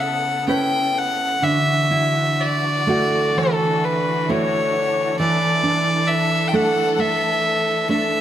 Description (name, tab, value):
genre	celtic folk, Celtic slow air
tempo	61-67 BPM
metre	4/4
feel	rubato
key	A major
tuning	A4 = 440 Hz
part	rich fiddle	melody	0.0-8.2 s	A4 to G5	-20 LUFS	left 1 dB	none
part	nylon-string guitar	accompaniment	0.0-8.2 s	D3 to B4	-21 LUFS	right 3 dB	none
part	bright symphonic string section	sustained chords	0.0-8.2 s	C#3 to A4	-27 LUFS	left 3 dB	none
room	moderate recital hall reverb, RT60 1.4 s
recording	none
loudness	-17 LUFS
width	side -10 dB against mid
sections	0.0-8.2 A section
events	none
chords	0.0 Aadd9; 1.4 Dadd9; 5.2 Asus4/E